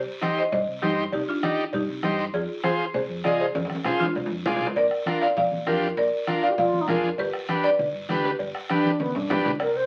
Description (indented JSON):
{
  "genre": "latin, cumbia",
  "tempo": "198 BPM",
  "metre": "4/4",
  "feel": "straight",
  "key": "unclear",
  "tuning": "A4 = 440 Hz",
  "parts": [
    { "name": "buzzing marimba with hard mallets", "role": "melody", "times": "0.0-9.4 s", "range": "D4 to F5", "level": "-28 LUFS", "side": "equal", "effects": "none" },
    { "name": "hollow-body short-scale fingered electric bass", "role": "bass", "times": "0.0-9.9 s", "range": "G1 to G2", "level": "-38 LUFS", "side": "equal", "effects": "none" },
    { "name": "overdriven combo organ", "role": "accompaniment", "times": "0.2-9.5 s", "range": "D4 to Eb5", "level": "-28 LUFS", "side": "equal", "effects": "none" },
    { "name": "bombo", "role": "percussion", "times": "0.2-9.8 s", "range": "none", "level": "-38 LUFS", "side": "equal", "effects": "none" },
    { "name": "congas", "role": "percussion", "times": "0.2-9.8 s", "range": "none", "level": "-35 LUFS", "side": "equal", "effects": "none" },
    { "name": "guiro", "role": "percussion", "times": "0.2-9.9 s", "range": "none", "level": "-46 LUFS", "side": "equal", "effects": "none" },
    { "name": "cowbell and timbales", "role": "percussion", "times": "0.5-9.8 s", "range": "none", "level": "-35 LUFS", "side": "equal", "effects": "none" },
    { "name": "breathy wooden-headed alto flute", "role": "second line", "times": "6.4-9.9 s", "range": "B3 to C5", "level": "-28 LUFS", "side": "equal", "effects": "none" }
  ],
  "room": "wet studio reverb, RT60 0.6 s",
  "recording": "very old 78 rpm record, vinyl crackle",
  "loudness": "-25 LUFS",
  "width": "mono",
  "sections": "0.0-9.6 A section",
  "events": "drum fill 3.5-4.8, 8.8-9.6",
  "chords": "0.0 Cm; 2.3 Fm; 4.8 Bb; 7.2 G"
}